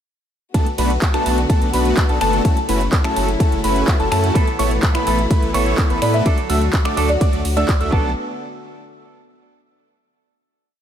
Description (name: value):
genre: EDM, festival progressive house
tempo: 126 BPM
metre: 4/4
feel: straight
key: B minor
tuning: A4 = 440 Hz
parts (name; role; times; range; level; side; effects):
- dark chamber string section; sustained chords; 0.5-8.1 s; B2 to F#4; -28 LUFS; left 3 dB; sidechain pumping
- bright grand piano; arpeggios; 0.5-8.1 s; A5 to E6; -24 LUFS; equal; sidechain pumping, digital delay
- dense compressed supersaw; riff; 0.5-8.1 s; A3 to E5; -22 LUFS; equal; sidechain pumping, digital delay
- big-room dance drum kit; drums; 0.5-7.9 s; finger snaps, handclaps, hi-hat, ride cymbal; -26 LUFS; right 1 dB; none
- electronic kick drum; drums; 0.5-8.0 s; none; -17 LUFS; equal; none
- saturated sub bass; bass; 0.8-8.1 s; F#1 to A2; -21 LUFS; equal; sidechain pumping
- semi-hollow electric guitar; accompaniment; 4.3-8.1 s; A2 to A4; -27 LUFS; right 5 dB; sidechain pumping, digital delay
- folk marimba with medium mallets; melody; 6.0-8.2 s; D5 to E5; -25 LUFS; right 1 dB; digital delay
room: light reverb, digital ambience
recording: none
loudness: -15 LUFS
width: side -9 dB against mid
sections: 0.5-8.2 drop; 8.2-10.1 final hit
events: drop 0.5-8.2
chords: 0.5 Bm7; 2.4 F#m7; 4.4 Asus2; 6.3 D; 7.9 Bm7; 8.2 N.C.